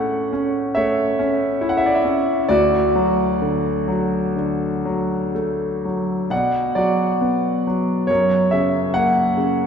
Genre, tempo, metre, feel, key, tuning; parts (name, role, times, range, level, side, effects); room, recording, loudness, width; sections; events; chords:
classical, lyrical solo piano; 59-71 BPM; 4/4; rubato; D major, B minor from 6.3 s; A4 = 440 Hz
clear concert grand piano; solo; 0.0-9.7 s; D2 to F#5; -17 LUFS; equal
wet church reverb, RT60 3.8 s; recorded in a church or concert hall; -17 LUFS; side -7 dB against mid
0.0-6.3 A section; 6.3-9.7 B section
0.0 A; 2.5 D; 6.3 Bm; 8.1 F#